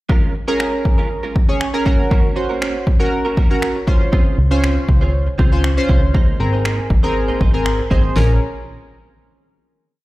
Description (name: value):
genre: dance-pop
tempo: 119 BPM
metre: 4/4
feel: straight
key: Bb minor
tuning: A4 = 438 Hz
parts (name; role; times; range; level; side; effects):
- direct-recorded clean electric guitar; riff; 0.1-8.3 s; Ab3 to C5; -27 LUFS; right 4 dB; ensemble chorus
- deep house drum kit; drums; 0.1-8.3 s; finger snaps, kick drum, snare drum; -17 LUFS; equal; overdrive
- chorused retro synth keys; accompaniment; 0.5-8.4 s; C4 to Db5; -20 LUFS; equal; sidechain pumping
- plucky analog bass; bass; 4.4-8.4 s; Ab1 to Db2; -17 LUFS; equal; sidechain pumping
room: light reverb, digital ambience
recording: played on a big sound system in a bare room, large studio reverb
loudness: -14 LUFS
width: side -18 dB against mid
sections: 0.1-8.2 verse; 8.2-10.0 final chord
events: none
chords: 0.1 Bbm7; 1.9 Gb; 3.9 Dbmaj7; 6.1 Abadd9; 8.2 Bbm7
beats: | 0.10 0.60 1.10 1.61 | 2.11 2.62 3.12 3.62 | 4.13 4.63 5.14 5.64 | 6.15 6.65 7.15 7.66 | 8.16